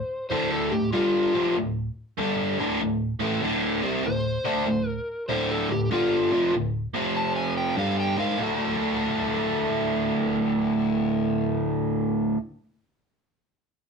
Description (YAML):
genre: rock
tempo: 97 BPM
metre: 4/4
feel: swing 65% on 8ths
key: D minor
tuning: A4 = 440 Hz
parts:
  - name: overdriven slide guitar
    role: melody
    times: 0.0-8.4 s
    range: F4 to A5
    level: -26 LUFS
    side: left 1 dB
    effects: none
  - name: biting overdriven guitar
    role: riff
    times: 0.3-12.4 s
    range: D2 to F#4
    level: -24 LUFS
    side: equal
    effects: none
room: moderate small room reverb, RT60 0.6 s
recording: rough rehearsal-room recording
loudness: -23 LUFS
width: side -5 dB against mid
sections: 0.0-8.4 A section; 8.4-10.9 B section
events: none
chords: 0.0 Dm; 6.8 F5; 7.8 Fm13/G; 8.4 D